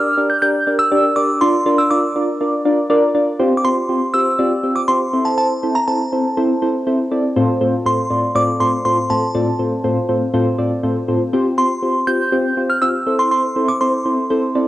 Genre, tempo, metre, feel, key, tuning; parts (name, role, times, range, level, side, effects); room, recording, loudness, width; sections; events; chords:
pop; 121 BPM; 4/4; straight; C mixolydian; A4 = 439 Hz
glassy synth bell; melody; 0.0-14.7 s; A5 to G6; -18 LUFS; right 1 dB; chorus, tremolo, cassette tape
soft electric-piano-like synth keys; accompaniment; 0.0-14.7 s; A2 to D5; -16 LUFS; equal; chorus, phaser, cassette tape
wet spring reverb, RT60 2.1 s; home recording on cassette; -14 LUFS; side -15 dB against mid
0.0-3.4 A section; 3.4-14.7 B section
0.0 Gm; 1.4 Bb; 3.4 Csus4; 5.1 Am; 7.4 F/A; 11.3 Csus4; 13.1 Am